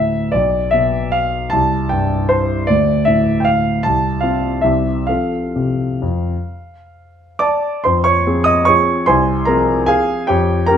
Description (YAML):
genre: classical, piano waltz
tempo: 125-166 BPM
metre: 3/4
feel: rubato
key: F major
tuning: A4 = 438 Hz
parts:
  - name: warm concert grand piano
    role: solo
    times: 0.0-10.8 s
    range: B1 to Eb6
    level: -14 LUFS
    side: equal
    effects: none
room: moderate large studio reverb, RT60 0.9 s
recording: none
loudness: -14 LUFS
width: side -8 dB against mid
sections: 0.0-7.9 A section; 7.9-10.8 B section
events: none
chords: 0.3 N.C.; 1.5 C5; 2.7 Dm; 3.8 F/C; 4.6 C; 5.1 F; 7.9 Fm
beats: | 0.34 0.74 1.15 | 1.53 1.92 2.31 | 2.69 3.07 3.46 | 3.84 4.22 4.64 | 5.09 5.56 6.02 | 6.48 6.94 7.41 | 7.86 8.27 8.68 | 9.09 9.49 9.90 | 10.30 10.69